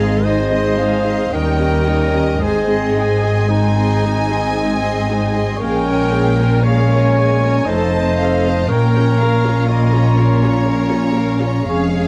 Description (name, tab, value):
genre	classical, slow romantic movement for symphony orchestra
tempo	58 BPM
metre	3/4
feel	uneven beats, rubato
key	unclear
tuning	A4 = 440 Hz
part	clear studio violin section	melody	0.0-12.1 s	C5 to A5	-30 LUFS	equal	none
part	clear clarinet	second line	0.0-12.1 s	Eb4 to Db5	-24 LUFS	equal	none
part	clear symphonic violin section	second line	0.0-12.1 s	Bb4 to C6	-34 LUFS	equal	none
part	mellow concert flute	second line	0.0-11.8 s	Eb5 to Bb5	-30 LUFS	equal	none
part	mellow cor anglais	second line	0.0-11.8 s	Db5 to Eb5	-29 LUFS	equal	none
part	dark studio viola section	accompaniment	0.0-12.1 s	Ab3 to C5	-25 LUFS	equal	none
part	clear French horn section	sustained chords	0.0-12.1 s	G3 to Eb4	-25 LUFS	equal	none
part	rich studio double bass section	bass	0.0-12.1 s	F1 to Eb2	-21 LUFS	equal	none
part	rich symphonic cello section	bass	0.0-12.1 s	Eb2 to Bb2	-23 LUFS	equal	none
room	light reverb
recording	close, detailed microphones, vinyl crackle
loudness	-16 LUFS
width	mono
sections	0.0-12.1 A section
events	none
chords	0.0 Ab; 1.3 Eb7; 2.4 Ab; 5.6 Bbm7; 7.7 F7; 8.7 Bbm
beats	0.23 1.31 | 2.39 3.47 4.53 | 5.57 6.63 7.67 | 8.68 9.68 10.66 | 11.68